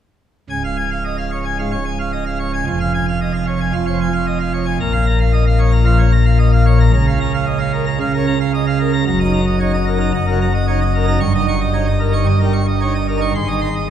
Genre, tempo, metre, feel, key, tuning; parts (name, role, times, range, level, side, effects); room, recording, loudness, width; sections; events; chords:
classical, organ toccata; 112 BPM; 4/4; straight; Db major; A4 = 436 Hz
pipe organ, plenum; solo; 0.5-13.9 s; Db1 to Db6; -14 LUFS; equal
wet church reverb, RT60 3.2 s; minimal, uncompressed stereo recording; -14 LUFS; side -10 dB against mid
0.5-13.9 A section
0.5 Db; 2.7 Db/F; 4.8 Bbm; 6.9 Bbm/Db; 9.1 Ebm/Gb; 11.2 Eb7/G; 13.4 Ab